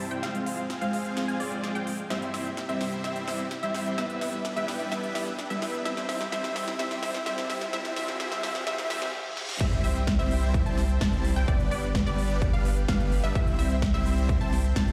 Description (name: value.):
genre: EDM, festival progressive house.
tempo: 128 BPM.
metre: 4/4.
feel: straight.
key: C major.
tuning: A4 = 439 Hz.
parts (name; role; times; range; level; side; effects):
supersaw pad; sustained chords; 0.0-14.9 s; C3 to G5; -41 LUFS; equal; sidechain pumping.
unison pluck; arpeggios; 0.0-14.9 s; D5 to A5; -38 LUFS; equal; sidechain pumping, delay.
dense compressed supersaw; riff; 0.0-14.9 s; G3 to A5; -34 LUFS; equal; sidechain pumping, low-pass filter, delay.
big-room dance drum kit; drums; 0.0-14.9 s; crash cymbal, hi-hat, snare drum; -38 LUFS; equal; overdrive, high-pass filter on snare, high-pass filter on hats, high-pass filter on cymbals.
riser, reverse cymbal and sub drop; sound effects; 2.0-11.5 s; none; -43 LUFS; equal; none.
saturated sub bass; bass; 9.6-14.9 s; G1 to C2; -30 LUFS; equal; sidechain pumping.
electronic kick drum; drums; 9.6-14.9 s; none; -30 LUFS; equal; overdrive.
room: moderate lush hall reverb, RT60 2.0 s.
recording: played on a big sound system in a bare room, large studio reverb, high-pass filter.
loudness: -28 LUFS.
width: mono.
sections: 0.0-9.6 A section; 9.6-14.9 B section.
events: build-up 0.0-9.6; drum fill 0.0-9.1, 9.4; filter sweep on supersaw synth 0.0-9.6; filter sweep 0.0-9.6; reverse cymbal 8.7-9.6; drop 9.6-14.9; impact 9.6-11.5.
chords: 0.2 Fm; 2.1 C; 4.0 G; 5.9 C; 7.7 Fm; 9.6 C; 11.5 G; 13.4 C.